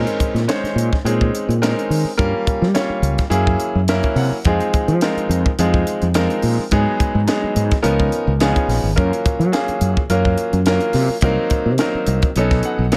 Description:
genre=electric jazz fusion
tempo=106 BPM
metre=4/4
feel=swing 54% on 16ths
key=Bb minor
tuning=A4 = 440 Hz
part: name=bright concert grand piano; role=accompaniment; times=0.0-13.0 s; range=F3 to Gb5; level=-22 LUFS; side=equal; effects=none
part: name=fretless electric bass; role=bass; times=0.0-13.0 s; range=Ab1 to G3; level=-20 LUFS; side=equal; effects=none
part: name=crisp fusion drum kit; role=drums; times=0.1-13.0 s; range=hi-hat, kick drum, snare drum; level=-23 LUFS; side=equal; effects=none
room=moderate club reverb, RT60 0.5 s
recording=none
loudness=-18 LUFS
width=mono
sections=0.0-13.0 A section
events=grand piano fill 3.6-4.5, 12.4-13.0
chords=0.0 Bbm11; 2.2 Gm7b5; 3.3 Gb9; 4.5 Fm7; 6.7 Abm7; 7.8 Db13; 9.0 Gbmaj7; 11.2 Cm7b5; 12.4 B9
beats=0.48 1.05 1.62 | 2.19 2.75 3.32 3.89 | 4.45 5.02 5.59 6.15 | 6.72 7.28 7.85 8.41 | 8.98 9.54 10.11 10.67 | 11.24 11.80 12.37 12.93

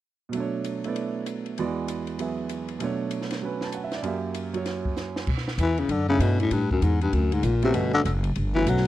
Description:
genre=jazz, small-group swing and bop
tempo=194 BPM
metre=4/4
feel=swing 63% on 8ths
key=B dorian, B minor from 5.3 s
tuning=A4 = 440 Hz
part: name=bright baby grand piano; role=accompaniment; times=0.3-8.9 s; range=E2 to A5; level=-29 LUFS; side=right 5 dB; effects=none
part: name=compact cocktail drum kit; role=drums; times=0.3-8.9 s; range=crash cymbal, hi-hat, kick drum, ride cymbal, snare drum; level=-35 LUFS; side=equal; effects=none
part: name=upright bass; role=bass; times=5.3-8.9 s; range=F#1 to B2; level=-24 LUFS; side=equal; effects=none
part: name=growling baritone saxophone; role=melody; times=5.6-8.9 s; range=F#2 to F#3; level=-23 LUFS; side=left 4 dB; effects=slapback echo
room=light reverb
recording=dry, close 1970s-style studio recording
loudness=-24 LUFS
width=side -14 dB against mid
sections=0.3-5.3 A section; 5.3-8.9 B section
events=drum fill 5.0-5.3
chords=0.3 Bm9; 1.6 E9; 2.8 Bm9; 4.0 F#7b9; 5.3 Bm11; 6.5 A5; 7.1 D; 7.7 Gmaj9#11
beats=| 0.33 0.64 0.95 1.26 | 1.57 1.88 2.19 2.50 | 2.81 3.11 3.42 3.73 | 4.04 4.35 4.66 4.97 | 5.28 5.58 5.89 6.20 | 6.51 6.82 7.13 7.43 | 7.74 8.05 8.36 8.67

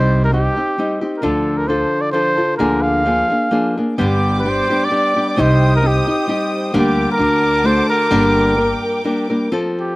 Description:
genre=mexican folk, mariachi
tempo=131 BPM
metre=3/4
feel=swing 54% on 8ths, rubato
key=G minor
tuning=A4 = 440 Hz
part: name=mellow trumpet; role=melody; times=0.0-10.0 s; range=G4 to F5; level=-18 LUFS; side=equal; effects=slapback echo
part: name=nylon-string guitar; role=accompaniment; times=0.0-10.0 s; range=G2 to Bb4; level=-17 LUFS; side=left 1 dB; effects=none
part: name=upright bass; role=bass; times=0.0-8.7 s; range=G1 to D2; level=-19 LUFS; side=right 1 dB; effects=none
part: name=warm studio violin section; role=sustained chords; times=4.0-9.5 s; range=Bb4 to Eb6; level=-24 LUFS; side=equal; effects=none
room=little or no reverb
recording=recorded outdoors, with no room sound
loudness=-14 LUFS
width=side -21 dB against mid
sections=0.0-9.5 A section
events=none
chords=0.0 Cm; 1.2 Dm; 2.6 Bb7/D; 4.0 G; 5.4 Cm; 6.7 Gm/D; 7.2 D; 8.1 Gm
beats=0.33 0.78 | 1.23 1.69 2.14 | 2.60 3.06 3.53 | 3.99 4.46 4.92 | 5.38 5.83 6.29 | 6.74 7.20 7.66 | 8.12 8.59 9.05 | 9.52

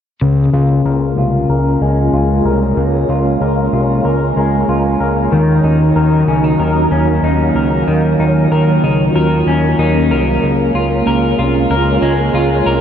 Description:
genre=dream pop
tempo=94 BPM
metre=4/4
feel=straight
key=Db major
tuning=A4 = 440 Hz
part: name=soft string machine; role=sustained chords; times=0.2-12.8 s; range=Gb3 to Bb4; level=-16 LUFS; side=right 2 dB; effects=phaser, ensemble chorus, low-pass filter, shimmer reverb
part: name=electric guitar at the edge of break-up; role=arpeggios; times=0.2-12.8 s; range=Db3 to Bb4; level=-15 LUFS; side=left 2 dB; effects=analog chorus, low-pass filter, tape echo, shimmer reverb
part: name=fat analog bass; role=bass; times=0.2-12.8 s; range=C2 to Eb2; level=-16 LUFS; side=equal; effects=none
room=moderate huge ambient reverb, RT60 8.1 s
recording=none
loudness=-11 LUFS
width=side -8 dB against mid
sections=0.2-12.8 A section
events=filter sweep 0.2-12.8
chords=0.2 Db6; 5.3 Ebm7; 10.4 Db6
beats=| 0.22 0.86 1.49 2.13 | 2.77 3.41 4.05 4.69 | 5.32 5.96 6.60 7.24 | 7.88 8.52 9.15 9.79 | 10.43 11.07 11.71 12.35

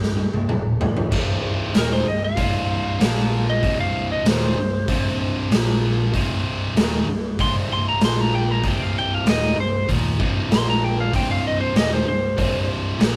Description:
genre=blues rock power trio and southern rock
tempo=96 BPM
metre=4/4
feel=straight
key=C minor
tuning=A4 = 440 Hz
part: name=lightly driven lead guitar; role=melody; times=0.0-12.7 s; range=Bb4 to C6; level=-27 LUFS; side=equal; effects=none
part: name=distorted electric guitar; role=riff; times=0.0-13.2 s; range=C2 to Bb3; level=-28 LUFS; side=equal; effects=overdrive
part: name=overdriven picked electric bass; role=bass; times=0.0-13.2 s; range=C1 to Bb1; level=-28 LUFS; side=equal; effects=none
part: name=raw garage drum kit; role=drums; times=0.0-13.2 s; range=crash cymbal, hi-hat, kick drum, snare drum, toms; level=-24 LUFS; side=equal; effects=none
room=moderate booth ambience, RT60 0.2 s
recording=rough rehearsal-room recording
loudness=-21 LUFS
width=mono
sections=0.0-1.1 A section; 1.1-13.2 B section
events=drum fill 0.0-1.1; lead electric guitar solo 1.1-13.2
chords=0.0 Cm; 3.0 Bb5; 3.6 Cm; 5.5 Bb5; 6.1 Cm; 8.0 Bb5; 8.6 Cm; 10.5 Bb5; 11.1 Cm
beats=0.49 | 1.12 1.75 2.37 3.00 | 3.63 4.25 4.88 5.51 | 6.13 6.76 7.38 8.01 | 8.63 9.26 9.88 10.51 | 11.13 11.76 12.38 13.01

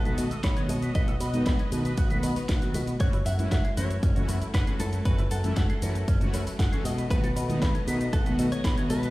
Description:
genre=nu-disco, nu disco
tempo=117 BPM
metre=4/4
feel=straight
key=unclear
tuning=A4 = 439 Hz
part: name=direct-recorded clean electric guitar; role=melody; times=0.0-9.1 s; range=A4 to E5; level=-38 LUFS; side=equal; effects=vintage 12-bit sampler grit, tape echo
part: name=rich studio string section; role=sustained chords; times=0.0-9.1 s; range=A3 to D#5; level=-39 LUFS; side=left 1 dB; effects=sidechain pumping
part: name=electric guitar with an envelope filter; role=riff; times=0.0-9.1 s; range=B3 to B5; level=-39 LUFS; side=right 1 dB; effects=lush chorus, tape echo
part: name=picked electric bass with an envelope filter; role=bass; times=0.0-9.1 s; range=F#1 to B2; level=-29 LUFS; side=equal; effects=sidechain pumping
part: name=mellow synth brass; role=accompaniment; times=0.1-8.9 s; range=D#3 to F#4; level=-32 LUFS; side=equal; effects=chorus, tape echo
part: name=house drum kit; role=drums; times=0.1-9.1 s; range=hi-hat, shaker, snare drum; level=-38 LUFS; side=left 1 dB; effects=overdrive, small room ambience
part: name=congas and bongos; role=percussion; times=0.1-9.0 s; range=none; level=-37 LUFS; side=left 2 dB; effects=none
part: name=electronic kick drum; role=drums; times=0.4-8.7 s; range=none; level=-26 LUFS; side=equal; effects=overdrive, small room ambience
room=digital ambience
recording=played on a big sound system in a bare room, stone room reverb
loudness=-24 LUFS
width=side -18 dB against mid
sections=0.0-9.1 A section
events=none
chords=0.0 B7; 3.0 F#m7; 6.8 B7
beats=0.44 | 0.95 1.46 1.98 2.49 | 3.00 3.51 4.03 4.54 | 5.05 5.57 6.08 6.59 | 7.10 7.62 8.13 8.64

